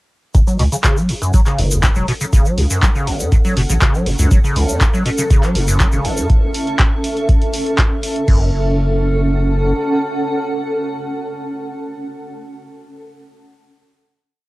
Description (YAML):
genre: acid house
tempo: 121 BPM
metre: 4/4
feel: straight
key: F# minor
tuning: A4 = 443 Hz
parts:
  - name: liquid acid bass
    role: riff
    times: 0.3-8.5 s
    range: F#1 to F#3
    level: -20 LUFS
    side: equal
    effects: overdrive, lush chorus, sidechain pumping, cassette tape, analog delay
  - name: saturated sub bass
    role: bass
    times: 0.3-9.7 s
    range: E1 to C#2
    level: -17 LUFS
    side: equal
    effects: tube saturation, sidechain pumping
  - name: electronic kick drum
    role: drums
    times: 0.3-8.4 s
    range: none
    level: -14 LUFS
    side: equal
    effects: none
  - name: punchy analog drum machine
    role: drums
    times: 0.3-8.4 s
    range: crash cymbal, handclaps, hi-hat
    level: -22 LUFS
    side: equal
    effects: none
  - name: egg shaker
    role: percussion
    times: 0.3-6.3 s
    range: none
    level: -26 LUFS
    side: left 1 dB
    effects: none
  - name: granular cloud pad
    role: texture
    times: 2.3-11.5 s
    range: C#4 to A5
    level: -21 LUFS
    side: right 1 dB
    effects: built-in reverb, sidechain pumping, cassette tape
room: light reverb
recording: home recording on cassette, lossy compression artefacts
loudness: -13 LUFS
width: side -20 dB against mid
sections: 0.3-8.3 groove; 8.3-12.2 final chord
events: fade-in on ambient pad 0.3-8.3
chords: 0.3 F#m